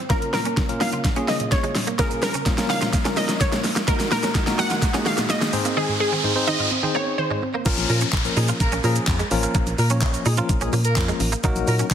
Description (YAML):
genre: dance-pop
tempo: 127 BPM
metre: 4/4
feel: straight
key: Bb minor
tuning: A4 = 438 Hz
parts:
  - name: direct-recorded clean electric guitar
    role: riff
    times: 0.0-11.9 s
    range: Ab3 to F4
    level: -31 LUFS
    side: right 5 dB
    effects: ensemble chorus, low-pass filter
  - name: wide unison pluck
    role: melody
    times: 0.1-7.4 s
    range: Ab4 to Gb5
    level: -26 LUFS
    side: equal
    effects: low-pass filter, tape echo
  - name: barky tine electric piano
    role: accompaniment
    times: 0.1-11.8 s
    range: F3 to Db5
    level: -27 LUFS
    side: left 2 dB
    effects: medium stereo tremolo, sidechain pumping, low-pass filter
  - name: soft round pluck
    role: arpeggios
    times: 0.1-7.5 s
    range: Ab2 to C4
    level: -31 LUFS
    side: right 1 dB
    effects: chorus, sidechain pumping, low-pass filter, tape echo
  - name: pop drum kit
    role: drums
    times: 0.1-11.9 s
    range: crash cymbal, handclaps, hi-hat, kick drum, shaker, snare drum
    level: -22 LUFS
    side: equal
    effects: overdrive
  - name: riser and downlifter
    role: sound effects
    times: 2.4-11.4 s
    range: none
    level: -29 LUFS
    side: equal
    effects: none
  - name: organ-like FM bass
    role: bass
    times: 7.7-11.9 s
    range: A1 to Bb2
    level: -22 LUFS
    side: equal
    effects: sidechain pumping
  - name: mellow horn section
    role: melody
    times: 7.9-11.8 s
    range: Ab3 to Bb4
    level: -29 LUFS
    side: left 1 dB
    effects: tape echo
room: moderate digital room reverb, RT60 1.1 s, digital ambience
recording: heavily compressed radio sound, multiband compression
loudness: -19 LUFS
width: side -9 dB against mid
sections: 0.0-7.7 A section; 7.7-11.9 B section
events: build-up 0.0-7.7; drum fill 0.0-5.8; riser 2.4-7.7; drop 7.7-11.9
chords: 0.1 Bbm; 3.9 Ebm/Bb; 5.5 Ab; 7.7 Bbm; 11.4 Ebm/Bb